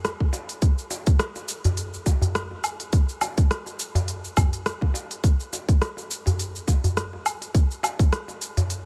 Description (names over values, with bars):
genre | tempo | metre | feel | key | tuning
downtempo | 104 BPM | 4/4 | swing 56% on 16ths | none | none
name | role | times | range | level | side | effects
organic electronic drum kit | drums | 0.0-8.8 s | cabasa, hi-hat, rim click, woodblock | -32 LUFS | equal | none
electronic kick drum | drums | 0.2-8.1 s | none | -21 LUFS | equal | none
darbuka | percussion | 0.3-8.7 s | none | -29 LUFS | equal | none
room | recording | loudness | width
digital ambience | none | -25 LUFS | mono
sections
0.0-8.9 A section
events
none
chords
none